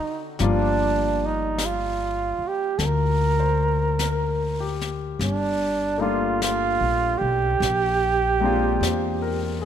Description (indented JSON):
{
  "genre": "jazz ballad",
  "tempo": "50 BPM",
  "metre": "4/4",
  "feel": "swing 66% on 8ths",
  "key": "G minor",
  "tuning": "A4 = 440 Hz",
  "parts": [
    { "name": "breathy flugelhorn", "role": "melody", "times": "0.0-9.6 s", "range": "D4 to Bb4", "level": "-23 LUFS", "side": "right 4 dB", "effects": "none" },
    { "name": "warm grand piano", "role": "accompaniment", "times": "0.0-9.7 s", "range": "D3 to D5", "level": "-28 LUFS", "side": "left 7 dB", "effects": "none" },
    { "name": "upright bass", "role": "bass", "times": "0.4-9.7 s", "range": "G1 to E2", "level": "-26 LUFS", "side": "left 2 dB", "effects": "none" },
    { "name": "jazz brush drum kit", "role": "drums", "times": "0.4-9.7 s", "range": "brushed snare drum, hi-hat, snare drum", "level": "-33 LUFS", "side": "left 4 dB", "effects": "none" }
  ],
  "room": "light reverb",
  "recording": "close, detailed microphones",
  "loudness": "-20 LUFS",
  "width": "side -9 dB against mid",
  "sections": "0.0-9.7 A section",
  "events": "none",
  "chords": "0.4 Gm7; 7.6 Bb7"
}